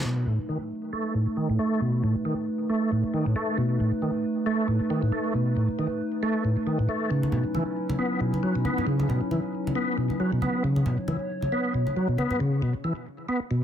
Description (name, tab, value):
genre	breakbeat, breaks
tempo	136 BPM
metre	4/4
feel	swing 57% on 16ths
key	unclear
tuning	A4 = 440 Hz
part	warbly tape-like pad	sustained chords	0.0-12.4 s	F#3 to C#5	-29 LUFS	equal	chorus, built-in reverb
part	bright tonewheel organ	riff	0.0-13.6 s	A2 to B3	-25 LUFS	equal	chorus vibrato, slow rotary speaker, tube saturation, vintage 12-bit sampler grit, low-pass filter, tape echo
part	congas	percussion	7.2-12.4 s	none	-32 LUFS	equal	none
room	moderate studio reverb, RT60 0.5 s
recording	dense, heavily limited modern master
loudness	-24 LUFS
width	side -9 dB against mid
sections	0.1-13.6 A section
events	filter sweep on tonewheel organ 0.1-13.6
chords	0.1 B7; 7.1 C#m11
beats	| 0.05 0.49 0.93 1.37 | 1.81 2.26 2.70 3.14 | 3.58 4.02 4.46 4.90 | 5.34 5.79 6.23 6.67 | 7.11 7.55 7.99 8.43 | 8.87 9.31 9.76 10.20 | 10.64 11.08 11.52 11.96 | 12.40 12.85 13.29